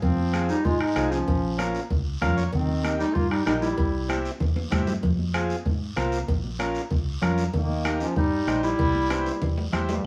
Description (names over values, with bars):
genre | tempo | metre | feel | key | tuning
latin, cumbia | 192 BPM | 4/4 | straight | F minor | A4 = 440 Hz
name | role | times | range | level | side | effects
warm clarinet | melody | 0.0-4.2, 7.6-9.7 s | Bb3 to F4 | -29 LUFS | equal | plate reverb
brilliant trombone | second line | 0.0-4.2, 7.5-10.1 s | G2 to Bb3 | -34 LUFS | equal | none
deep dub fingered electric bass | bass | 0.0-10.0 s | Bb1 to Ab2 | -30 LUFS | equal | none
bombo | percussion | 0.0-9.9 s | none | -31 LUFS | equal | none
cowbell and timbales | percussion | 0.0-10.0 s | none | -39 LUFS | equal | none
guiro | percussion | 0.0-10.0 s | none | -45 LUFS | equal | none
congas | percussion | 0.2-10.0 s | none | -39 LUFS | equal | none
combo organ | accompaniment | 0.3-9.9 s | Bb3 to F5 | -32 LUFS | equal | none
room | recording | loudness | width
moderate studio reverb, RT60 0.8 s | none | -25 LUFS | mono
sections
0.0-10.0 A section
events
transistor combo organ fill 2.1-2.5; drum fill 4.4-5.0, 9.1-10.0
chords
0.0 Fm; 1.3 Bbm; 2.5 Eb; 3.8 C; 5.0 Fm; 6.3 Bbm; 7.5 Eb; 8.8 C